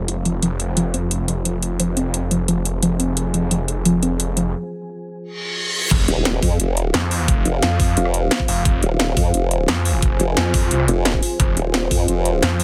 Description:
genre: dark technical drum and bass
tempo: 175 BPM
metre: 4/4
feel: straight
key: F minor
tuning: A4 = 440 Hz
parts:
  - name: deep dark ambient pad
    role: sustained chords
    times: 0.0-12.6 s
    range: F4 to Ab5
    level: -30 LUFS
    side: equal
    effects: chorus, built-in reverb, sidechain pumping
  - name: snarling distorted saw bass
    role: bass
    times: 0.0-12.6 s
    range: F1 to F2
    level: -24 LUFS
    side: equal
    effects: distortion, overdrive, sidechain pumping
  - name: soft round pluck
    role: arpeggios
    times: 0.1-4.5 s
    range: F3 to F4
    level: -24 LUFS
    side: equal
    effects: chorus, sidechain pumping, dub echo
  - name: drum and bass drum kit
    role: drums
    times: 0.1-12.6 s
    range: crash cymbal, hi-hat, rim click, snare drum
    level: -24 LUFS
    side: equal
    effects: none
  - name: reverse cymbal and impact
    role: sound effects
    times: 5.3-7.3 s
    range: none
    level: -27 LUFS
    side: equal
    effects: none
  - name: electronic kick drum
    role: drums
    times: 5.9-12.0 s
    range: none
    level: -21 LUFS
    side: equal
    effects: none
  - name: formant-sweep wobble bass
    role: bass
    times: 6.1-12.4 s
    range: Eb1 to F2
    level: -21 LUFS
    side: equal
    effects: chorus
room: light reverb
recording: none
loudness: -19 LUFS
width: mono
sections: 0.0-5.9 A section; 5.9-12.6 B section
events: break 4.5-5.9; reverse cymbal 5.3-5.9; drop 5.9-12.6; impact 5.9-7.3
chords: 0.0 F5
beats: 0.08 | 0.42 0.77 1.11 1.45 | 1.80 2.14 2.48 2.83 | 3.17 3.51 3.85 4.20 | 4.54 4.88 5.22 5.57 | 5.91 6.25 6.60 6.94 | 7.28 7.62 7.97 8.31 | 8.65 9.00 9.34 9.68 | 10.03 10.37 10.71 11.05 | 11.40 11.74 12.08 12.43

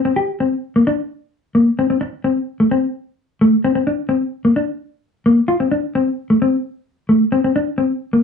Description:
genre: highlife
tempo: 130 BPM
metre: 4/4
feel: straight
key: unclear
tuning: A4 = 441 Hz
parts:
  - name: mellow electric guitar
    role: solo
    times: 0.1-8.2 s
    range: A3 to G4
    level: -14 LUFS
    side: left 2 dB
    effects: none
room: light reverb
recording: band playing live in one room, nothing above 10.6 kHz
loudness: -15 LUFS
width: side -6 dB against mid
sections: 0.0-8.2 A section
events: none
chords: none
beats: 0.39 0.86 1.32 | 1.79 2.25 2.71 3.18 | 3.64 4.10 4.56 5.02 | 5.48 5.94 6.40 6.86 | 7.32 7.78

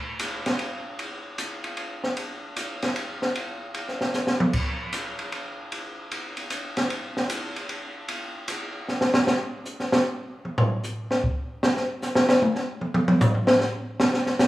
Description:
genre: jazz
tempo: 152 BPM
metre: 3/4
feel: swing 66% on 8ths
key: none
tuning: none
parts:
  - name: open jazz drum kit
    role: drums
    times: 0.2-14.5 s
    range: crash cymbal, hi-hat, kick drum, ride cymbal, snare drum, toms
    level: -23 LUFS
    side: equal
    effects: none
room: moderate recital hall reverb, RT60 1.6 s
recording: recorded in a church or concert hall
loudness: -24 LUFS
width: side -16 dB against mid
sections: 0.0-9.3 A section; 9.3-14.5 B section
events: drum fill 4.1-4.5, 8.9-9.3; drum solo 9.3-14.5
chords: none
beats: 0.20 0.59 | 0.99 1.39 1.78 | 2.18 2.57 2.97 | 3.36 3.75 4.15 | 4.54 4.94 5.33 | 5.72 6.12 6.51 | 6.91 7.30 7.69 | 8.09 8.48 8.87 | 9.27 9.66 10.06 | 10.45 10.84 11.24 | 11.63 12.03 12.42 | 12.81 13.21 13.60 | 14.00 14.39

